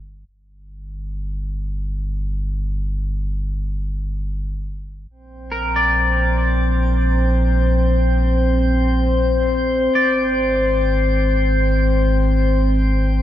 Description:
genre	ambient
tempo	free time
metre	none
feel	none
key	unclear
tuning	A4 = 440 Hz
part	warm sub bass	bass	0.0-13.2 s	G1 to Bb1	-19 LUFS	equal	none
part	drifting glass-harmonics texture	texture	5.5-13.2 s	C4 to C5	-19 LUFS	left 2 dB	chorus, built-in reverb, shimmer reverb
part	twangy electric guitar	arpeggios	5.5-12.1 s	Bb4 to D5	-22 LUFS	equal	wide subtle chorus, diffuse ambient delay, shimmer reverb
room	moderate plate reverb, RT60 2.5 s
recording	dreamy mix soaked in reverb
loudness	-16 LUFS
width	side -12 dB against mid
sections	0.0-13.2 A section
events	fade-in on sub bass 0.0-13.2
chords	0.0 N.C.; 5.1 Bbadd9; 9.9 Ab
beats	free time

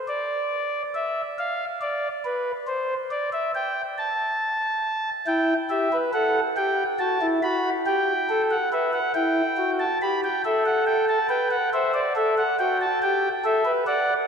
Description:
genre	classical, baroque-style 3-part fugue for pipe organ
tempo	46 BPM (dotted quarters)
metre	12/8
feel	straight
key	unclear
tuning	A4 = 438 Hz
part	chamber organ, principal	solo	0.1-14.1 s	E4 to B5	-22 LUFS	equal	none
room	wet church reverb, RT60 3.6 s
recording	none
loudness	-22 LUFS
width	side -6 dB against mid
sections	0.0-14.3 A section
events	none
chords	0.0 N.C.; 5.3 Em; 10.4 A5; 13.0 Em/G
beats	| 0.08 1.38 2.68 3.98 | 5.28 6.57 7.86 9.16 | 10.45 11.73 13.02

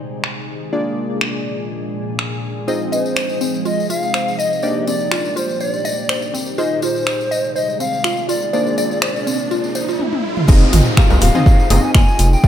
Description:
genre	afro house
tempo	123 BPM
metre	4/4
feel	swing 54% on 16ths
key	F dorian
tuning	A4 = 439 Hz
part	ethereal airy pad	sustained chords	0.0-10.0 s	Bb2 to D5	-27 LUFS	right 2 dB	ensemble chorus, built-in reverb, phaser, sidechain pumping
part	warm analog keys	stabs	0.0-12.5 s	Bb3 to Eb5	-24 LUFS	left 2 dB	chorus, sidechain pumping, ping-pong delay
part	deep house drum kit	drums	0.2-12.3 s	crash cymbal, finger snaps, hi-hat, toms	-21 LUFS	equal	low-pass filter on snare, low-pass filter on toms, low-pass filter on cymbals, low-pass filter on hats
part	mellow polished pan flute	melody	2.7-12.5 s	C5 to Ab5	-22 LUFS	left 1 dB	ping-pong delay
part	mallet-like synth pluck	arpeggios	2.7-12.5 s	C4 to F5	-24 LUFS	right 1 dB	chorus, phaser, sidechain pumping, ping-pong delay
part	tambourine	percussion	2.7-12.5 s	none	-30 LUFS	left 4 dB	none
part	riser and downlifter	sound effects	7.9-12.5 s	none	-25 LUFS	right 2 dB	none
part	round analog bass	bass	10.5-12.5 s	Eb1 to C2	-14 LUFS	equal	sidechain pumping
part	electronic kick drum	drums	10.5-12.5 s	none	-11 LUFS	equal	none
part	djembe	percussion	10.5-12.5 s	none	-22 LUFS	left 2 dB	none
room	light reverb, digital ambience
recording	faint mains hum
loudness	-15 LUFS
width	side -10 dB against mid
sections	0.0-10.5 A section; 10.5-12.5 B section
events	filter sweep on drum 0.0-10.5; riser 7.9-10.5; drum fill 10.0-10.5; drop 10.5-12.5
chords	0.0 Ab; 0.7 Bb7; 2.7 Fm7; 4.6 Ebmaj7; 6.6 Ab; 8.5 Bb7; 10.5 Fm7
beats	0.24 | 0.73 1.22 1.70 2.19 | 2.68 3.17 3.65 4.14 | 4.63 5.12 5.61 6.09 | 6.58 7.07 7.56 8.04 | 8.53 9.02 9.51 10.00 | 10.48 10.97 11.46 11.95 | 12.44

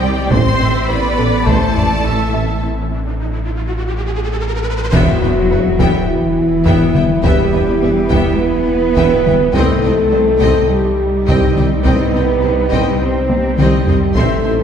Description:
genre	cinematic, hybrid orchestral and electronic film score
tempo	104 BPM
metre	4/4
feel	straight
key	E minor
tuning	A4 = 440 Hz
part	warm symphonic violin section	melody	0.0-14.5 s	Eb5 to C6	-25 LUFS	equal	none
part	rich studio violin section	second line	0.0-14.5 s	G4 to E5	-26 LUFS	left 3 dB	none
part	clear symphonic viola section	accompaniment	0.0-14.5 s	B3 to E5	-24 LUFS	equal	none
part	shimmering ambient pad	sustained chords	0.0-14.6 s	C3 to C5	-24 LUFS	left 1 dB	chorus, built-in reverb
part	tight sequenced synth	arpeggios	0.0-14.6 s	C3 to A4	-24 LUFS	left 1 dB	none
part	dark symphonic double bass section	bass	0.0-14.5 s	A1 to E2	-22 LUFS	right 2 dB	none
part	sub bass with octave	bass	0.0-14.6 s	E1 to C2	-22 LUFS	equal	none
part	warm symphonic cello section	bass	0.0-14.6 s	E3 to C4	-21 LUFS	right 2 dB	none
part	warm tuba	bass	0.0-14.6 s	E1 to C2	-24 LUFS	right 2 dB	none
part	mellow French horn section	sustained chords	0.3-14.6 s	C4 to C5	-17 LUFS	equal	none
part	warm trombone section	sustained chords	0.3-14.6 s	E3 to E4	-24 LUFS	right 2 dB	none
part	taiko ensemble	drums	0.3-14.6 s	none	-19 LUFS	left 1 dB	none
part	riser and impact	sound effects	2.3-7.2 s	none	-23 LUFS	equal	none
room	wet scoring stage reverb, RT60 1.8 s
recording	heard from further back in the room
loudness	-12 LUFS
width	side -8 dB against mid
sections	0.0-4.9 A section; 4.9-14.6 B section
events	riser 2.3-4.9; break 2.6-4.9; drum fill 4.1-4.9, 13.3-14.2; impact 4.9-7.2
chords	0.3 Am; 4.9 Em; 9.5 Cm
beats	| 0.31 0.89 1.47 2.04 | 2.62 3.20 3.77 4.35 | 4.93 5.50 6.08 6.66 | 7.24 7.81 8.39 8.96 | 9.54 10.12 10.70 11.27 | 11.85 12.43 13.00 13.58 | 14.16

